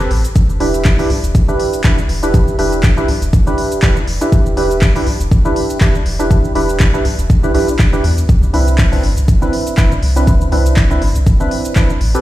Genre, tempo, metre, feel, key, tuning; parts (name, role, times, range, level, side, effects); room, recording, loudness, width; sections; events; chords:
deep house; 121 BPM; 4/4; swing 56% on 16ths; E minor; A4 = 440 Hz
percussive organ stab; stabs; 0.0-12.2 s; C4 to B4; -17 LUFS; right 1 dB; analog chorus, cassette tape, sidechain pumping, ping-pong delay
deep house drum kit; drums; 0.0-12.2 s; handclaps, hi-hat, shaker; -24 LUFS; equal
round analog bass; bass; 0.1-12.1 s; E1 to E2; -16 LUFS; equal; tube saturation, sidechain pumping
electronic kick drum; drums; 0.4-11.9 s; -12 LUFS; equal
light reverb; played on a big sound system in a bare room, large studio reverb; -11 LUFS; side -15 dB against mid
0.0-12.2 A section
0.4 Em7; 8.3 Cmaj9